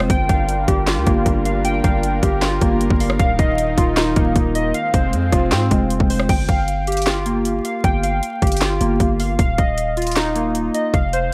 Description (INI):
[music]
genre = hip hop, trap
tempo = 155 BPM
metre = 4/4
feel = half-time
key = G phrygian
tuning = A4 = 439 Hz
[part]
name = warm analog pad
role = sustained chords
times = 0.0-6.3 s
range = Eb3 to Bb4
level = -29 LUFS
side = equal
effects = lush chorus
[part]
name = warbly lo-fi synth keys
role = arpeggios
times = 0.0-11.3 s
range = Ab3 to G5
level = -22 LUFS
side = equal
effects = chorus, low-pass filter, delay
[part]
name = hard-hitting 808-style bass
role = bass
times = 0.0-11.3 s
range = Eb1 to Ab2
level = -24 LUFS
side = equal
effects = none
[part]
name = trap drum kit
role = drums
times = 0.0-11.2 s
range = crash cymbal, handclaps, hi-hat, kick drum, rim click, snare drum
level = -22 LUFS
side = equal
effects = overdrive
[sound]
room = light reverb, digital ambience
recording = vinyl crackle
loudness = -18 LUFS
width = mono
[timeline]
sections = 0.0-6.3 A section; 6.3-11.3 B section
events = none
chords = 0.1 Gm7; 3.2 Ebsus2; 4.7 Fm; 6.3 Gm7; 9.4 Ebsus2